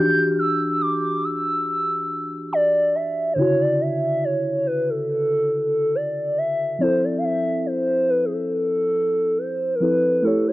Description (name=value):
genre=R&B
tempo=70 BPM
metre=4/4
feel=swing 54% on 16ths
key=unclear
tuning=A4 = 441 Hz
part: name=gliding portamento lead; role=melody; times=0.0-10.5 s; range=G#4 to G6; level=-20 LUFS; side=equal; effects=chorus, cassette tape
part: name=muted felt-like synth keys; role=accompaniment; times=0.0-10.5 s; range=C#3 to C#5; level=-24 LUFS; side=left 1 dB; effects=chorus, cassette tape
room=little or no reverb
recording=home recording on cassette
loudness=-19 LUFS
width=side -17 dB against mid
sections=0.0-3.4 A section; 3.4-10.5 B section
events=none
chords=0.0 Em9; 3.4 Dmaj9; 6.8 Fmaj7